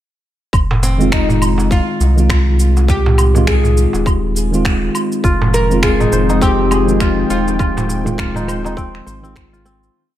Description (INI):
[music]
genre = organic downtempo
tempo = 102 BPM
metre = 4/4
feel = swing 58% on 16ths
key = F minor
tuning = A4 = 441 Hz
[part]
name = warm sub bass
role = bass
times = 0.5-9.9 s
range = Eb1 to C2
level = -16 LUFS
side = equal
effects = none
[part]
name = electronic kick drum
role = drums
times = 0.5-9.5 s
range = none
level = -17 LUFS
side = equal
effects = none
[part]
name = electronic woodblock, shaker and finger snaps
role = drums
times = 0.5-9.9 s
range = none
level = -23 LUFS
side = right 1 dB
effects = none
[part]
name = darbuka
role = percussion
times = 0.7-9.5 s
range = none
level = -22 LUFS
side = right 1 dB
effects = none
[part]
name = oud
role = melody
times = 0.8-7.8 s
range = C4 to Bb4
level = -21 LUFS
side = left 1 dB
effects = diffuse ambient delay
[part]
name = tine electric piano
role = accompaniment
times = 1.0-9.9 s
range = Eb3 to F4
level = -19 LUFS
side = right 1 dB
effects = lush chorus, sidechain pumping, diffuse ambient delay
[part]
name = warm analog pad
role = sustained chords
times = 5.2-9.9 s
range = F3 to G5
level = -21 LUFS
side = left 4 dB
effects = chorus, sidechain pumping
[part]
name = kora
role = arpeggios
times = 5.2-10.2 s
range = C4 to C5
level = -21 LUFS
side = left 1 dB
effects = diffuse ambient delay
[sound]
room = moderate plate reverb, RT60 1.6 s, digital ambience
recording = dreamy mix soaked in reverb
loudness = -12 LUFS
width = side -12 dB against mid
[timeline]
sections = 0.5-9.9 groove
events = fade-out 6.8-9.9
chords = 0.5 Fm7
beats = | 0.53 1.12 1.71 2.30 | 2.89 3.48 4.06 4.65 | 5.24 5.83 6.42 7.00 | 7.59 8.18 8.77 9.36